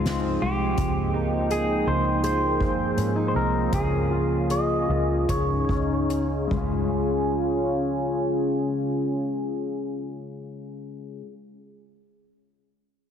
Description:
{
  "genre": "dream pop",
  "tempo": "70-83 BPM",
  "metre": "4/4",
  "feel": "straight",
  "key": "Db lydian",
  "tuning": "A4 = 440 Hz",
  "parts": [
    { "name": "warm analog pad", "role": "sustained chords", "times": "0.0-11.1 s", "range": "Db3 to Ab5", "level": "-27 LUFS", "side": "right 1 dB", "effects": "chorus, low-pass filter" },
    { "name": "picked twelve-string acoustic guitar", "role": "arpeggios", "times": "0.0-11.3 s", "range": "Db3 to Ab4", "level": "-29 LUFS", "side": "left 4 dB", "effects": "lush chorus, low-pass filter, ping-pong delay" },
    { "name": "vintage muted fingered electric bass", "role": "bass", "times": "0.0-11.2 s", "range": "C2 to Ab2", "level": "-28 LUFS", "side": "equal", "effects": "none" },
    { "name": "soft-mallet drum kit", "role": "drums", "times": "0.1-6.7 s", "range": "hi-hat, kick drum, ride cymbal, snare drum", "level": "-30 LUFS", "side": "right 1 dB", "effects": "none" },
    { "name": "electric guitar at the edge of break-up", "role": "melody", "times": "0.4-6.1 s", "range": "G4 to Eb5", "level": "-28 LUFS", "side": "right 1 dB", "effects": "low-pass filter, ping-pong delay" }
  ],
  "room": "moderate lush hall reverb, RT60 2.8 s",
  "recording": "heavily compressed radio sound",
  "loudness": "-22 LUFS",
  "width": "side -8 dB against mid",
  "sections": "0.0-6.9 A section; 6.9-10.3 B section",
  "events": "filter sweep 0.0-6.9; slowing down 0.8-6.9",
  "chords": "0.0 Dbmaj7; 0.8 Abmaj7/Db; 3.7 Bbm7/Db; 5.3 Dbsus2; 6.5 Db"
}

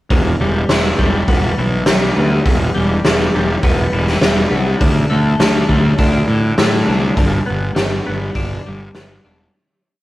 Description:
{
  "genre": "quiet-loud alternative rock",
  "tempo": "102 BPM",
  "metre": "4/4",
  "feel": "straight",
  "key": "E minor",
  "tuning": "A4 = 440 Hz",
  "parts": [
    { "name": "twelve-string electric guitar", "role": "arpeggios", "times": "0.1-9.5 s", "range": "E2 to D4", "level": "-20 LUFS", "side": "left 1 dB", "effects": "phaser" },
    { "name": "fuzz fingered electric bass", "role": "bass", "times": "0.1-9.5 s", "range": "E1 to A2", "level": "-17 LUFS", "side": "equal", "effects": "overdrive" },
    { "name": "raw garage drum kit", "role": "drums", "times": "0.1-9.1 s", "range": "hi-hat, kick drum, snare drum", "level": "-16 LUFS", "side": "equal", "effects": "none" }
  ],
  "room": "light reverb",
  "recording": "rough rehearsal-room recording, warm saturation",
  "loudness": "-13 LUFS",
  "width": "side -16 dB against mid",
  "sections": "0.1-9.5 verse",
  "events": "fade-out 7.2-9.5",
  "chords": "0.1 Em; 4.8 D5; 7.2 G"
}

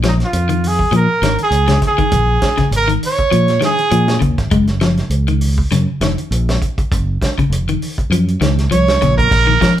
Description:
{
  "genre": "afrobeat",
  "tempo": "100 BPM",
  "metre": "4/4",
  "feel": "swing 55% on 16ths",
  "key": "unclear",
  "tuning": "A4 = 441 Hz",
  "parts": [
    { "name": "electric guitar at the edge of break-up", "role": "arpeggios", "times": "0.0-9.8 s", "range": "Db3 to Ab3", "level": "-18 LUFS", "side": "left 3 dB", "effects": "none" },
    { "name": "fingered electric bass", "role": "bass", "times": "0.0-9.6 s", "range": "F1 to Bb2", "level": "-17 LUFS", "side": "equal", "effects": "none" },
    { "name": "warm soul drum kit", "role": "drums", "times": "0.0-9.8 s", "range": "crash cymbal, hi-hat, kick drum, snare drum", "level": "-20 LUFS", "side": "equal", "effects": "none" },
    { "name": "clear trumpet", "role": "melody", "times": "0.1-4.2, 8.7-9.7 s", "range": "Eb4 to Db5", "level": "-16 LUFS", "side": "right 3 dB", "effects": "none" }
  ],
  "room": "moderate large studio reverb, RT60 0.8 s",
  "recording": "band playing live in one room",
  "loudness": "-12 LUFS",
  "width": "side -11 dB against mid",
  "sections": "0.0-9.3 A section",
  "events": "none",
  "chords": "0.0 Bbm7; 4.5 Gbmaj7"
}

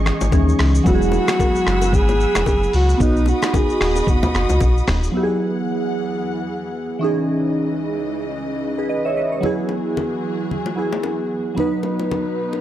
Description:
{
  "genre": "afrobeats",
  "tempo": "112 BPM",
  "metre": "4/4",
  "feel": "swing 58% on 16ths",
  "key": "E major",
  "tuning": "A4 = 435 Hz",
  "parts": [
    { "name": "glassy digital keys", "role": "accompaniment", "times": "0.0-12.6 s", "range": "E3 to E5", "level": "-21 LUFS", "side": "right 1 dB", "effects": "chorus" },
    { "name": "warm studio string section", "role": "sustained chords", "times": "0.0-12.6 s", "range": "C#2 to E6", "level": "-29 LUFS", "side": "equal", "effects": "none" },
    { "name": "sub bass with octave", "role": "bass", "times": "0.0-5.1 s", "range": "D#1 to D#2", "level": "-19 LUFS", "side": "equal", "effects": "none" },
    { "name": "lo-fi sampler-style drum kit", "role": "drums", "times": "0.1-5.1 s", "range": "finger snaps, hi-hat, kick drum, rim click, shaker, toms", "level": "-20 LUFS", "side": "equal", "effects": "none" },
    { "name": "bongos and congas", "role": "percussion", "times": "0.2-4.8, 9.4-12.6 s", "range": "none", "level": "-28 LUFS", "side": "left 4 dB", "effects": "none" },
    { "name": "breathy alto saxophone", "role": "melody", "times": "0.9-4.9 s", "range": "D#4 to G#4", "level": "-22 LUFS", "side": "equal", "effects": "analog delay" }
  ],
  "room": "digital ambience",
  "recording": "dry, gritty hardware recording",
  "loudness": "-17 LUFS",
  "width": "side -12 dB against mid",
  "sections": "0.0-5.1 A section; 5.1-12.6 B section",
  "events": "none",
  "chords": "0.0 C#madd9; 0.9 Eadd9; 3.0 B; 5.1 Eadd9; 7.0 C#madd9; 9.4 Eadd9; 11.6 B"
}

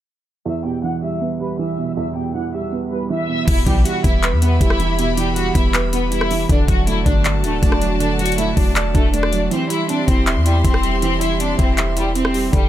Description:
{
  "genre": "hip hop, trap",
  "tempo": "159 BPM",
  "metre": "4/4",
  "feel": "half-time",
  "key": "E minor",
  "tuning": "A4 = 440 Hz",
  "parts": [
    { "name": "rich studio violin section", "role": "melody", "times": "0.5-12.7 s", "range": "G3 to F#6", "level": "-23 LUFS", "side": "left 2 dB", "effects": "none" },
    { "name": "felt-muted upright piano", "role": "accompaniment", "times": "0.5-12.7 s", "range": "E2 to E5", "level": "-22 LUFS", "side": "right 6 dB", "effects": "none" },
    { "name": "warm chamber string section", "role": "sustained chords", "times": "3.5-12.7 s", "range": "F#4 to C6", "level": "-28 LUFS", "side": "left 2 dB", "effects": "none" },
    { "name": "warm 808-style bass", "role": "bass", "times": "3.5-12.7 s", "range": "D1 to E2", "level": "-20 LUFS", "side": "equal", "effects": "none" },
    { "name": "trap drum kit", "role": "drums", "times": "3.5-12.6 s", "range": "crash cymbal, handclaps, hi-hat, kick drum, rim click", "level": "-18 LUFS", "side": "left 1 dB", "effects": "none" }
  ],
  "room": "small room ambience",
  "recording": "low-pass filter",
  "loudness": "-16 LUFS",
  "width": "side -12 dB against mid",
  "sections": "0.5-3.5 A section; 3.5-12.7 B section",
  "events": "filter sweep 0.5-3.5; kick muted 9.5-9.9",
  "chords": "0.5 Em; 6.5 D; 9.5 C/E"
}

